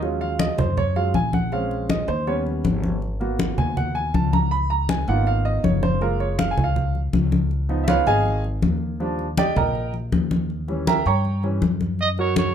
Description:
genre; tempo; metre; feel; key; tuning
latin, salsa; 160 BPM; 4/4; straight; Eb minor; A4 = 439 Hz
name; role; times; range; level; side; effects
bright upright piano; accompaniment; 0.0-12.5 s; Fb3 to Db6; -23 LUFS; right 3 dB; none
upright bass; bass; 0.0-12.5 s; Gb1 to G2; -24 LUFS; equal; none
congas; percussion; 0.0-12.5 s; none; -24 LUFS; left 3 dB; none
clear trumpet; melody; 12.0-12.5 s; Db5 to Eb5; -23 LUFS; right 4 dB; none
room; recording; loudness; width
moderate studio reverb, RT60 0.7 s; dark, warm production; -19 LUFS; side -8 dB against mid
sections
0.0-12.0 A section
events
upright piano solo 0.0-12.0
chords
0.0 Ebm11; 1.5 Bbm9; 2.3 Eb7b13; 3.0 Abm7; 4.5 Db13; 6.0 Gbmaj9; 7.5 Db9; 9.0 Ebmaj7; 10.5 Eb7b9; 12.0 Gb

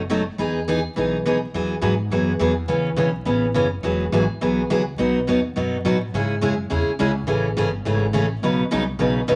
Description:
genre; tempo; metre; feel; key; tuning
country, western swing; 209 BPM; 4/4; swing 62% on 8ths; E major; A4 = 439 Hz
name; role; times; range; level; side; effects
upright bass; bass; 0.0-9.4 s; E1 to A2; -29 LUFS; equal; none
picked steel-string acoustic guitar; accompaniment; 0.1-9.4 s; B2 to B4; -22 LUFS; equal; none
room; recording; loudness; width
wet studio reverb, RT60 0.8 s; vinyl crackle; -22 LUFS; mono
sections
0.0-1.5 A section; 1.5-9.4 B section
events
none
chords
0.4 Emaj7; 1.5 Eadd9; 2.7 Aadd9; 3.8 Eadd9; 5.0 B; 6.1 C#m; 7.3 Amaj7; 8.4 Badd9

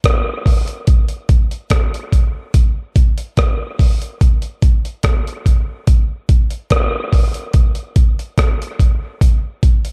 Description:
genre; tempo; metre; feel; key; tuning
reggae; 72 BPM; 4/4; straight; none; none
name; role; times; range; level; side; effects
breakbeat sampler-style drum kit; drums; 0.0-9.9 s; hi-hat, kick drum, rim click; -15 LUFS; equal; none
room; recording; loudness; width
light reverb; dark, warm production; -16 LUFS; mono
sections
0.0-9.9 A section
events
none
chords
none

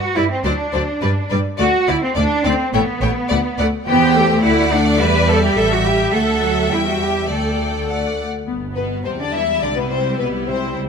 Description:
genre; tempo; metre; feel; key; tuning
quick classical-period movement for string orchestra; 105 BPM; 2/4; straight; unclear; A4 = 440 Hz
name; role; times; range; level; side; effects
rich symphonic cello section; bass; 0.0-10.6 s; B2 to B4; -19 LUFS; right 2 dB; none
rich symphonic violin section; melody; 0.2-10.8 s; B4 to G5; -24 LUFS; left 6 dB; none
bright symphonic violin section; second line; 0.2-10.8 s; B3 to E5; -24 LUFS; left 4 dB; none
clear symphonic viola section; accompaniment; 0.2-10.9 s; F#3 to E4; -22 LUFS; left 1 dB; none
rich symphonic double bass section; bass; 0.2-10.9 s; G1 to G2; -22 LUFS; right 3 dB; none
room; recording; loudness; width
light reverb; close, detailed microphones; -15 LUFS; side -6 dB against mid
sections
0.0-8.5 A section; 8.5-10.9 B section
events
none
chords
0.4 D; 1.0 G5; 1.6 D; 2.7 N.C.; 3.3 D5; 3.9 C/E; 4.4 D; 5.0 Em; 5.6 A5; 6.1 D; 6.7 Em; 7.3 Dsus4; 8.5 G; 9.1 Em; 9.6 C

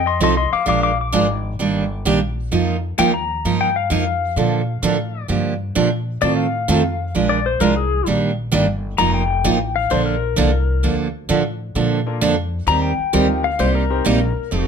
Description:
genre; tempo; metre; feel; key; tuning
country, western swing; 130 BPM; 4/4; swing 68% on 8ths; Bb major; A4 = 441 Hz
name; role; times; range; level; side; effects
pedal steel guitar; second line; 0.0-14.6 s; Ab4 to D6; -21 LUFS; left 7 dB; none
upright bass; bass; 0.0-14.7 s; F1 to Bb2; -22 LUFS; left 1 dB; none
picked steel-string acoustic guitar; accompaniment; 0.2-14.7 s; C3 to Bb4; -19 LUFS; right 5 dB; none
bright upright piano; accompaniment; 12.1-14.0 s; Bb3 to C5; -26 LUFS; left 3 dB; none
room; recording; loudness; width
moderate club reverb, RT60 0.9 s; none; -16 LUFS; side -6 dB against mid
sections
0.0-14.7 A section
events
pedal steel guitar solo 0.0-14.7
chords
0.0 F7; 0.7 Bb7; 1.6 Ebmaj7; 2.5 F7sus4; 4.4 Bbmaj7; 5.3 Gm7; 6.2 F7/A; 7.1 Bb7; 8.1 Ebmaj7; 9.0 F9sus4; 9.9 Bbmaj9; 11.8 Bbmaj7; 12.7 Eb69; 13.6 Cm7

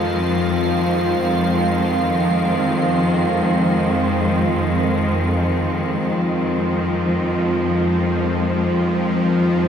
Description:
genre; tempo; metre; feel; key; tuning
dark ambient drone; free time; none; none; F minor; A4 = 440 Hz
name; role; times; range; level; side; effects
rich symphonic cello section; sustained chords; 0.0-9.7 s; F2 to C4; -19 LUFS; equal; none
bowed-like drone; drone; 0.0-9.7 s; F2 to F3; -21 LUFS; left 1 dB; built-in reverb
icy glass pad; texture; 0.0-5.8 s; F5; -27 LUFS; right 7 dB; chorus, built-in reverb
room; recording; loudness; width
wet cathedral reverb, RT60 5.2 s; none; -16 LUFS; side -8 dB against mid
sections
0.0-5.8 A section; 5.8-9.7 B section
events
none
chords
0.0 Fm

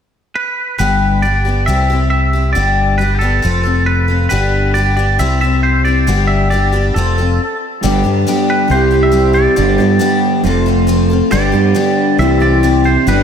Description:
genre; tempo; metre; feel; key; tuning
rock; 137 BPM; 4/4; straight; G major; A4 = 440 Hz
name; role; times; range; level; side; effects
twangy electric guitar; melody; 0.4-13.2 s; G4 to E5; -18 LUFS; right 2 dB; ping-pong delay
picked twelve-string acoustic guitar; accompaniment; 0.8-13.2 s; G2 to A4; -17 LUFS; left 6 dB; none
fingered electric bass; bass; 0.8-13.2 s; F1 to G2; -15 LUFS; right 1 dB; none
electric guitar through a small old amp; riff; 7.8-13.2 s; G2 to C5; -13 LUFS; right 2 dB; lush chorus
room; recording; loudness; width
moderate plate reverb, RT60 2.5 s; dreamy mix soaked in reverb; -11 LUFS; side -8 dB against mid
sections
0.8-7.8 A section; 7.8-13.2 B section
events
stop 7.4-7.8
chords
0.0 N.C.; 0.8 G; 1.7 C; 2.6 G; 3.4 F; 4.3 G; 5.2 C; 6.1 G; 7.0 F; 7.8 G; 8.7 C; 9.6 G; 10.4 F; 11.3 G; 12.2 C

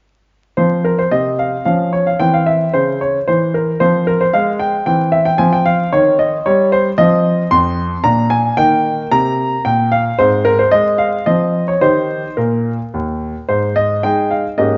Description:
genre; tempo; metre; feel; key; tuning
classical-period piano sonatina; 112 BPM; 3/4; rubato; F minor, Ab major from 7.0 s; A4 = 439 Hz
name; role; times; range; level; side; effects
clear baby grand piano; solo; 0.6-14.8 s; Eb2 to C6; -15 LUFS; equal; none
room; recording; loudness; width
moderate recital hall reverb, RT60 1.5 s; vinyl crackle, nothing above 7.5 kHz; -15 LUFS; mono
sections
0.6-13.5 A section; 13.5-14.8 B section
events
none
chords
0.6 F5; 1.7 Db/F; 2.2 C; 3.8 Fm; 4.9 C/E; 5.4 F5; 8.0 Bb7; 8.6 Eb; 10.2 Ab; 11.3 F5; 11.8 Eb; 13.5 Ab5

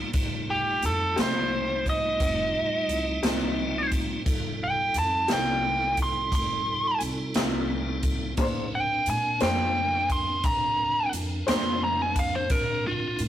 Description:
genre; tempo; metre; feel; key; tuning
slow blues; 58 BPM (dotted quarters); 12/8; straight; F mixolydian; A4 = 445 Hz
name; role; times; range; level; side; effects
tonewheel organ; sustained chords; 0.0-13.3 s; G3 to B4; -33 LUFS; equal; slow rotary speaker, overdrive, chorus vibrato
upright bass; bass; 0.0-13.3 s; F1 to Bb2; -33 LUFS; equal; none
swinging big-band drum kit; drums; 0.1-13.3 s; hi-hat, kick drum, snare drum; -29 LUFS; equal; none
biting lead guitar; melody; 0.5-13.2 s; F4 to C6; -26 LUFS; right 1 dB; overdrive
electric guitar through a small old amp; accompaniment; 1.2-11.7 s; F3 to C5; -30 LUFS; left 2 dB; tremolo
room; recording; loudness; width
moderate stone room reverb, RT60 1.2 s; rough rehearsal-room recording; -23 LUFS; side -12 dB against mid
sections
0.0-13.3 A section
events
lead electric guitar solo 0.0-13.3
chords
0.0 F9; 8.4 Bb9

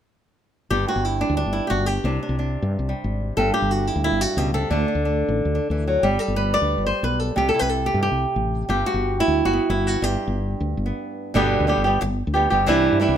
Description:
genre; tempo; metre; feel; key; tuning
flamenco; 180 BPM; 4/4; straight; G major; A4 = 441 Hz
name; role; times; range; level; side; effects
flamenco guitar; melody; 0.7-13.2 s; G2 to D5; -21 LUFS; right 1 dB; plate reverb
woody fretless electric bass; bass; 0.7-13.2 s; G1 to G2; -24 LUFS; left 1 dB; none
room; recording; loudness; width
moderate studio reverb, RT60 0.7 s; none; -19 LUFS; side -9 dB against mid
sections
0.7-11.3 A section; 11.3-13.2 B section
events
break 11.0-11.3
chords
0.7 G5; 2.0 Csus2; 3.4 G5; 4.7 D5; 6.0 G; 7.4 C; 8.7 G

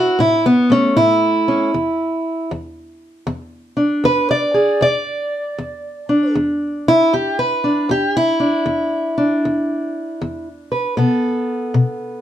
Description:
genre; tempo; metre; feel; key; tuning
acoustic country blues, solo or duo; 78 BPM; 4/4; swing 65% on 8ths; unclear; A4 = 438 Hz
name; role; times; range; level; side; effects
fingerpicked steel-string acoustic guitar; solo; 0.0-12.2 s; E2 to D5; -15 LUFS; equal; none
room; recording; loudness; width
moderate studio reverb, RT60 0.6 s; none; -15 LUFS; side -11 dB against mid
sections
0.0-12.2 A section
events
steel-string acoustic guitar solo 0.0-12.2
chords
0.0 A; 1.7 E7(no3); 11.0 B7(no3)

